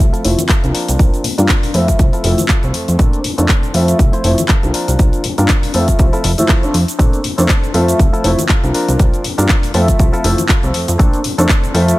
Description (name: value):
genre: filtered disco house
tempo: 120 BPM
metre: 4/4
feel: swing 56% on 16ths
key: F major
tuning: A4 = 441 Hz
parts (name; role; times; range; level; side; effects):
- clear grand piano; accompaniment; 0.0-12.0 s; F3 to E5; -18 LUFS; equal; phaser, sidechain pumping, low-pass filter
- direct-recorded clean electric guitar; riff; 0.0-12.0 s; C4 to C5; -24 LUFS; left 1 dB; sidechain pumping, low-pass filter
- plucky analog bass; bass; 0.0-11.9 s; F1 to G2; -16 LUFS; equal; sidechain pumping, low-pass filter
- house drum kit; drums; 0.0-12.0 s; cabasa, handclaps, hi-hat; -20 LUFS; left 1 dB; sidechain pumping on hats, sidechain pumping on perc
- tambourine and congas; percussion; 0.0-12.0 s; none; -26 LUFS; left 3 dB; sidechain pumping on perc, low-pass filter on perc
- electronic kick drum; drums; 0.5-11.6 s; none; -13 LUFS; equal; none
room: little or no reverb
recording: none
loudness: -11 LUFS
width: side -18 dB against mid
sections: 0.0-12.0 A section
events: filter sweep 0.0-12.0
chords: 0.0 Fmaj7; 0.7 C9sus4; 1.7 Fmaj7; 3.0 Bbmaj9; 3.7 Fmaj7; 4.7 C9sus4; 5.7 Fmaj7; 7.0 Bbmaj9; 7.7 Fmaj7; 8.7 C9sus4; 9.7 Fmaj7; 11.0 Bbmaj9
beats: 0.49 | 0.99 1.49 1.99 2.49 | 2.99 3.49 3.99 4.49 | 4.99 5.49 5.99 6.49 | 6.99 7.49 7.99 8.49 | 8.99 9.49 9.99 10.49 | 10.99 11.49